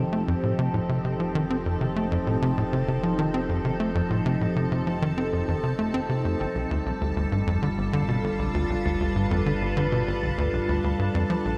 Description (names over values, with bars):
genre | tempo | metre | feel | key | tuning
ambient, sequencer-driven space music | 98 BPM | 4/4 | straight | unclear | A4 = 439 Hz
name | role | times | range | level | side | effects
evolving wavetable pad | sustained chords | 0.0-11.6 s | Bb2 to B4 | -30 LUFS | equal | chorus, built-in reverb, phaser
tight sequencer bass | riff | 0.0-11.6 s | G1 to C4 | -28 LUFS | equal | analog delay
fat analog bass | bass | 0.0-11.6 s | F1 | -39 LUFS | equal | none
bubbling stepped-filter texture | texture | 0.0-11.6 s | A5 | -43 LUFS | equal | chorus, built-in reverb
room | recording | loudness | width
wet huge ambient reverb, RT60 7.9 s | in a vast, echoing space | -26 LUFS | mono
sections
0.0-11.6 A section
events
fade-in on analog synth bass 0.0-11.6; fade-in on synth texture 0.0-11.6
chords
0.0 F7; 6.4 G7